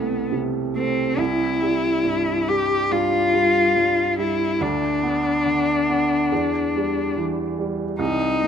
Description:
classical, romantic duo for cello and grand piano; 70 BPM; 4/4; rubato; A4 = 441 Hz
rich cello; melody; 0.0-8.5 s; B3 to G4; -20 LUFS; left 2 dB
clear baby grand piano; accompaniment; 0.0-8.5 s; C2 to B3; -24 LUFS; right 4 dB
light reverb; close, detailed microphones; -19 LUFS; side -8 dB against mid
0.0-8.5 A section
0.0 Am/C; 1.2 C; 4.6 Bm/D; 6.3 Em7
0.33 | 1.19 2.05 2.91 3.76 | 4.61 5.46 6.32 7.16 | 8.00

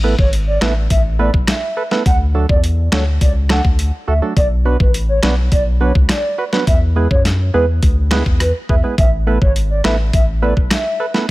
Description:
dancehall; 104 BPM; 4/4; straight; A major; A4 = 439 Hz
percussive organ stab; accompaniment; 0.0-11.3 s; F#3 to B4; -21 LUFS; right 4 dB; chorus
saturated sub bass; bass; 0.0-10.7 s; G#1 to F#2; -16 LUFS; equal
hollow clarinet-like synth lead; melody; 0.2-11.1 s; B4 to F#5; -22 LUFS; equal; chorus, digital delay
boom bap sampler-style drum kit; drums; 0.2-11.3 s; hi-hat, kick drum, rim click, snare drum; -16 LUFS; equal
little or no reverb; -13 LUFS; side -18 dB against mid
0.0-11.3 A section
0.0 Asus2; 2.1 D; 4.4 Bm; 6.7 E; 9.0 Asus2
0.33 0.90 1.48 | 2.06 2.63 3.21 3.79 | 4.37 4.94 5.52 6.10 | 6.67 7.25 7.83 8.40 | 8.98 9.56 10.13 10.71

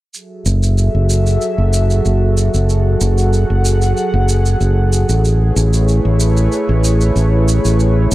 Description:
sunset chillout; 94 BPM; 4/4; straight; F# minor; A4 = 440 Hz
airy breathy pad; sustained chords; 0.1-8.1 s; F#3 to F#5; -18 LUFS; equal; chorus
shaker; drums; 0.1-8.1 s; -25 LUFS; right 2 dB
fingered electric bass; bass; 0.5-8.1 s; F#1 to A1; -13 LUFS; equal
little or no reverb; dry, gritty hardware recording; -12 LUFS; side -17 dB against mid
0.1-8.1 A section
0.1 F#m9; 5.2 Amaj9
| 0.14 0.78 1.42 2.06 | 2.69 3.33 3.97 4.61 | 5.25 5.88 6.52 7.16 | 7.80

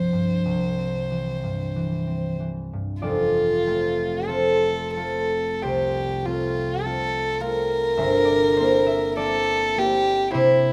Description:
classical, romantic duo for violin and harp; 42-54 BPM; 4/4; rubato; F major; A4 = 440 Hz
dark violin; melody; 0.0-10.7 s; E4 to C5; -26 LUFS; equal
concert harp; accompaniment; 0.0-10.7 s; F1 to G5; -25 LUFS; equal
moderate stone room reverb, RT60 1.2 s; close, detailed microphones; -23 LUFS; mono
0.0-3.0 A section; 3.0-10.7 A section
0.5 C; 3.0 F; 8.0 C7/G
0.45 1.74 | 3.04 4.29 5.64 6.85 | 8.01 9.19 10.34

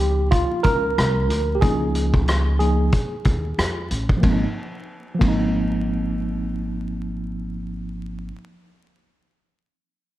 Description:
hip hop, jazz-hop; 92 BPM; 4/4; swing 58% on 16ths; Ab major; A4 = 441 Hz
tine electric piano; accompaniment; 0.0-8.3 s; F3 to Bb4; -24 LUFS; right 1 dB; overdrive, fast stereo tremolo
upright bass; bass; 0.0-8.3 s; Ab1 to F2; -24 LUFS; equal
vintage drum kit; drums; 0.3-5.4 s; hi-hat, kick drum, ride cymbal, rim click; -22 LUFS; equal
light reverb, studio ambience; dark, warm production, vinyl crackle; -19 LUFS; side -14 dB against mid
0.0-4.2 A section; 4.2-6.8 B section
tine electric piano solo 0.0-4.2
0.0 Db69; 4.2 Ab69
0.32 0.97 | 1.62 2.28 2.93 3.58 | 4.23 4.88 5.54 6.19

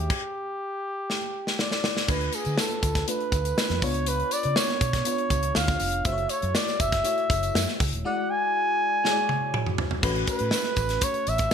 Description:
polished 1980s jazz-funk pop; 121 BPM; 4/4; straight; A major; A4 = 440 Hz
breathy flugelhorn; melody; 0.0-11.5 s; G4 to G#5; -27 LUFS; right 1 dB
FM electric piano; accompaniment; 0.0-11.5 s; G#3 to E5; -32 LUFS; left 3 dB; lush chorus
vintage muted fingered electric bass; bass; 0.0-11.5 s; D#1 to D3; -29 LUFS; right 1 dB
modern studio drum kit; drums; 0.1-11.5 s; crash cymbal, hi-hat, kick drum, snare drum, toms; -26 LUFS; equal; gated reverb
tambourine; percussion; 2.1-11.5 s; -38 LUFS; right 10 dB
moderate plate reverb, RT60 1.0 s, small room ambience; bright 1980s-style digital production; -23 LUFS; side -7 dB against mid
0.0-2.1 A section; 2.1-10.0 B section; 10.0-11.5 C section
drum fill 1.1-2.1, 9.0-10.0
0.1 N.C.; 2.1 Dm6; 3.8 C#7b9; 6.1 F#m7; 8.0 E9; 10.0 A69
| 0.10 0.60 1.09 1.59 | 2.09 2.58 3.08 3.58 | 4.07 4.57 5.07 5.56 | 6.06 6.55 7.05 7.55 | 8.04 8.54 9.04 9.54 | 10.03 10.53 11.02 11.52

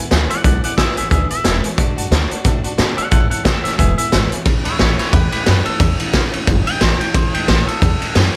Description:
rockabilly; 179 BPM; 4/4; swing 58% on 8ths; A major; A4 = 443 Hz
picked steel-string acoustic guitar; accompaniment; 0.0-8.4 s; E2 to F#4; -28 LUFS; equal
tack piano; accompaniment; 0.0-4.4 s; B4 to A5; -33 LUFS; equal
upright bass; bass; 0.1-8.3 s; E1 to B2; -21 LUFS; equal
raw garage drum kit; drums; 0.1-8.2 s; hi-hat, kick drum, ride cymbal, snare drum; -18 LUFS; equal
twangy electric guitar; melody; 0.3-8.4 s; E4 to G5; -25 LUFS; equal; tape echo
little or no reverb; -16 LUFS; mono
0.0-4.5 A section; 4.5-8.4 A section
0.0 E; 1.8 D; 3.1 A; 3.8 E; 4.5 A
0.11 | 0.44 0.78 1.11 1.44 | 1.78 2.11 2.45 2.78 | 3.12 3.45 3.79 4.12 | 4.46 4.80 5.13 5.47 | 5.80 6.14 6.47 6.81 | 7.15 7.48 7.82 8.15

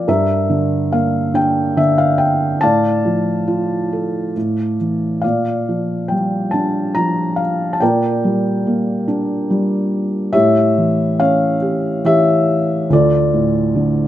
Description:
classical, lyrical solo piano; 70 BPM; 3/4; rubato; A4 = 439 Hz
felt-muted upright piano; solo; 0.0-14.1 s; D2 to Bb5; -14 LUFS; equal
light reverb; close, detailed microphones; -14 LUFS; side -12 dB against mid
0.0-14.1 A section
0.1 Gm; 2.6 Dm/A; 4.4 A5; 5.2 Bb6; 7.8 Gm/Bb; 10.3 A7; 12.9 Dm
| 0.08 0.92 1.77 | 2.62 3.48 4.36 | 5.24 6.10 6.96 | 7.81 8.66 9.50 | 10.35 11.19 12.04 | 12.90 13.76

